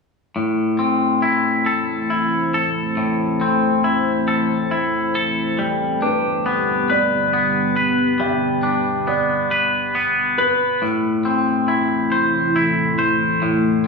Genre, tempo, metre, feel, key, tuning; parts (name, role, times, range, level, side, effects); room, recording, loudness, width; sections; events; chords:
rock; 46 BPM (dotted quarters); 6/8; straight; A minor; A4 = 442 Hz
deep dark ambient pad; sustained chords; 1.6-13.9 s; C3 to C5; -23 LUFS; equal; chorus, built-in reverb
twangy electric guitar; arpeggios; 0.4-13.9 s; A2 to C5; -18 LUFS; left 2 dB; spring reverb
felt-muted upright piano; arpeggios; 6.0-10.8 s; B4 to E5; -25 LUFS; right 5 dB
wet large studio reverb, RT60 1.0 s; band playing live in one room, studio ambience; -16 LUFS; side -4 dB against mid
0.4-10.8 A section; 10.8-13.9 A section
0.4 Am; 5.6 G; 10.8 Am